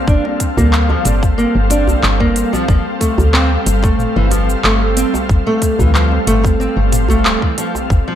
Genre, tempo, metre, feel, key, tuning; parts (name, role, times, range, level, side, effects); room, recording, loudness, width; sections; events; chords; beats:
organic downtempo; 92 BPM; 4/4; straight; A4 = 440 Hz
ethereal airy pad; sustained chords; 0.0-8.2 s; G3 to F5; -20 LUFS; equal; ensemble chorus, built-in reverb, sidechain pumping
nylon-string guitar; arpeggios; 0.1-8.2 s; E3 to D4; -18 LUFS; right 1 dB; ping-pong delay
woody FM bass; bass; 0.1-8.0 s; D1 to D2; -15 LUFS; equal
electronic kick drum; drums; 0.1-8.0 s; -15 LUFS; equal
organic electronic drum kit; drums; 0.1-8.0 s; handclaps, hi-hat, shaker, toms; -19 LUFS; equal
djembe; percussion; 0.3-7.9 s; -22 LUFS; equal
light reverb, digital ambience; -12 LUFS; side -10 dB against mid
0.0-8.2 A section
0.0 Gm7; 2.7 F/G
| 0.08 0.73 1.38 2.03 | 2.68 3.34 3.99 4.64 | 5.29 5.95 6.60 7.25 | 7.90